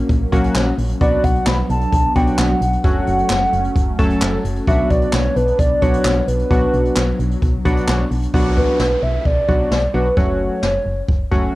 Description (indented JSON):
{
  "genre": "synth-pop",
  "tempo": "131 BPM",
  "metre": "4/4",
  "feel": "straight",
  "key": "B minor",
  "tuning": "A4 = 440 Hz",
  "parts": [
    { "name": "phased analog pad", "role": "sustained chords", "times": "0.0-8.3 s", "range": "F#3 to D4", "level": "-26 LUFS", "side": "equal", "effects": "phaser, chorus, cassette tape" },
    { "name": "solid FM bass", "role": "bass", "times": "0.0-11.5 s", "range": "F#1 to B1", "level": "-20 LUFS", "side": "equal", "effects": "none" },
    { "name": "jazz brush drum kit", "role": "drums", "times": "0.1-11.4 s", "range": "handclaps, hi-hat, kick drum, snare drum", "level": "-20 LUFS", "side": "equal", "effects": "none" },
    { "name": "warm analog keys", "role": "accompaniment", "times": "0.3-11.6 s", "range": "F#3 to A4", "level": "-21 LUFS", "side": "left 1 dB", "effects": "chorus, cassette tape" },
    { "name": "hollow clarinet-like synth lead", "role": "melody", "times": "1.0-11.5 s", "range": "B4 to B5", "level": "-20 LUFS", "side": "equal", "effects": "chorus, cassette tape" },
    { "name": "downlifter", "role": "sound effects", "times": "8.3-11.6 s", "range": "none", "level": "-32 LUFS", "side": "equal", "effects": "none" }
  ],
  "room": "light reverb",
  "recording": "home recording on cassette",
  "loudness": "-14 LUFS",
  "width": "side -18 dB against mid",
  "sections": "0.0-8.3 A section; 8.3-11.6 B section",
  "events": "none",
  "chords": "0.0 F#/A#; 1.0 Bm; 2.8 F#m; 4.7 Bm; 10.2 F#m"
}